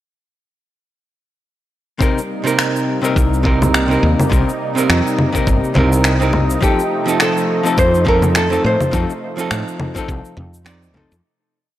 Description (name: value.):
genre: sunset chillout.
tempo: 104 BPM.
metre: 4/4.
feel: swing 57% on 16ths.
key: C dorian.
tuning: A4 = 440 Hz.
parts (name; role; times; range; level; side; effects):
archtop guitar, miked and amplified; accompaniment; 2.0-11.1 s; C3 to D5; -19 LUFS; moving between left 4 dB and right 4 dB; auto-pan, analog delay.
lush unison pad; sustained chords; 2.0-11.2 s; C3 to Eb4; -23 LUFS; right 1 dB; chorus.
electronic kick drum; drums; 2.0-10.2 s; none; -18 LUFS; equal; none.
electronic shaker, finger snaps and congas; drums; 2.0-11.2 s; none; -20 LUFS; equal; none.
woody fretless electric bass; bass; 3.2-11.2 s; G1 to A2; -17 LUFS; equal; none.
nylon-string guitar; melody; 6.6-10.6 s; G4 to C5; -18 LUFS; equal; analog delay.
room: light reverb.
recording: dry, gritty hardware recording, transformer saturation.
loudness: -13 LUFS.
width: side -13 dB against mid.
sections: 2.0-11.2 groove.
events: fade-out 8.2-11.2.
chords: 2.0 Cm7; 6.6 F7.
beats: | 2.01 2.58 3.16 3.74 | 4.32 4.89 5.47 6.05 | 6.62 7.20 7.78 8.35 | 8.93 9.51 10.09 10.66.